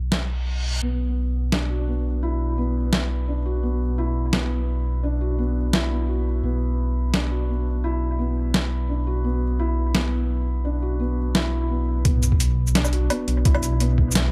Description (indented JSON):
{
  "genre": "half-time drum and bass",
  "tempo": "171 BPM",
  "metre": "4/4",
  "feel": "swing 53% on 16ths, half-time",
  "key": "B minor",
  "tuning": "A4 = 441 Hz",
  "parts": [
    { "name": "dark detuned saw bass", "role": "bass", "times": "0.0-14.3 s", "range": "B1", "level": "-25 LUFS", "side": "equal", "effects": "none" },
    { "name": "boom bap sampler-style drum kit", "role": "drums", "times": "0.1-14.2 s", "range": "hi-hat, shaker, snare drum, woodblock", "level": "-25 LUFS", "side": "equal", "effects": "none" },
    { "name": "reverse cymbal and sub drop", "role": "sound effects", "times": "0.3-0.8, 12.1-13.5 s", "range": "none", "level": "-34 LUFS", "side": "equal", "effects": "none" },
    { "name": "felt-muted upright piano", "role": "arpeggios", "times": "0.8-14.3 s", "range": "B3 to F#4", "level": "-30 LUFS", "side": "equal", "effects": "dub echo" },
    { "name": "electronic kick drum", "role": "drums", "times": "12.1-14.1 s", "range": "none", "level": "-22 LUFS", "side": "equal", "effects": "none" }
  ],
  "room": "light reverb",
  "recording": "echo-heavy mix",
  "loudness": "-23 LUFS",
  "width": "mono",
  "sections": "0.0-12.1 A section; 12.1-14.3 B section",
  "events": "reverse cymbal 0.3-0.8; drop 12.1-14.3; impact 12.1-13.5",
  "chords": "0.0 Bm"
}